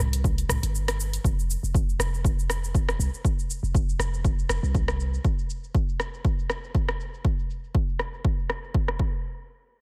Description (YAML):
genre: afro house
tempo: 120 BPM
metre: 4/4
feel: swing 55% on 16ths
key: unclear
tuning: A4 = 442 Hz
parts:
  - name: warm 808-style bass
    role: bass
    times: 0.0-5.2 s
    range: F1 to C2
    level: -30 LUFS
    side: equal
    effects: sidechain pumping
  - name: afro-pop drum kit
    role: drums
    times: 0.0-9.0 s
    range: hi-hat, rim click, shaker, toms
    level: -33 LUFS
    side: equal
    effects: low-pass filter on snare, low-pass filter on toms, low-pass filter on perc, low-pass filter on hats
  - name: electronic kick drum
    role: drums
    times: 0.2-9.1 s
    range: none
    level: -28 LUFS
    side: equal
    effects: overdrive
room: little or no reverb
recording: none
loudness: -26 LUFS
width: mono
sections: 0.0-1.2 A section; 1.2-9.2 B section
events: break 0.7-1.2; filter sweep on drum 1.2-9.2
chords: none